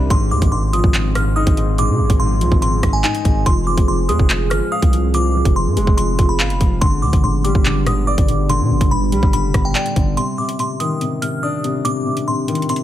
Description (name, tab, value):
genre	hip hop, drill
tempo	143 BPM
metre	4/4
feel	half-time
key	C harmonic minor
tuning	A4 = 440 Hz
part	glassy synth bell	melody	0.0-12.8 s	G5 to F6	-23 LUFS	right 1 dB	chorus
part	dark baby grand piano	accompaniment	0.0-12.8 s	Ab2 to F5	-21 LUFS	left 3 dB	none
part	deep dark ambient pad	sustained chords	0.0-12.8 s	D3 to Ab4	-25 LUFS	right 2 dB	chorus, built-in reverb
part	long sustained 808-style bass	bass	0.0-10.2 s	F1 to C3	-19 LUFS	equal	none
part	drill drum kit	drums	0.1-12.8 s	handclaps, hi-hat, kick drum, rim click	-17 LUFS	equal	none
room	little or no reverb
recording	none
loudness	-14 LUFS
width	side -12 dB against mid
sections	0.0-10.2 A section; 10.2-12.8 B section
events	none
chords	0.1 Ab6; 3.5 Fm; 6.8 G; 10.2 Cmadd9